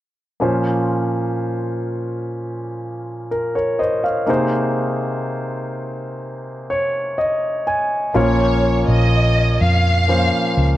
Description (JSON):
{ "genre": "pop", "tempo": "62 BPM", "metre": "4/4", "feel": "straight", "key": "Bb minor", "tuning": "A4 = 440 Hz", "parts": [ { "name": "warm concert grand piano", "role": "accompaniment", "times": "0.4-10.8 s", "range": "Bb2 to Ab5", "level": "-19 LUFS", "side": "equal", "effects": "none" }, { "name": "warm studio violin section", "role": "melody", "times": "8.2-10.8 s", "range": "Db5 to F5", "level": "-20 LUFS", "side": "equal", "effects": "none" }, { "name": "vintage muted fingered electric bass", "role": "bass", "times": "8.2-10.8 s", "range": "Bb1 to F2", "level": "-16 LUFS", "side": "equal", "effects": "none" } ], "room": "light reverb, small room ambience", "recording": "worn, warbling old tape, cassette tape, warbly pitch drift", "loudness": "-17 LUFS", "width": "side -14 dB against mid", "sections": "0.4-8.2 A section; 8.2-10.8 B section", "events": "grand piano fill 6.2-8.2", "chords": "0.4 Bbmadd9; 4.3 Abadd9/C; 8.2 Bbmadd9" }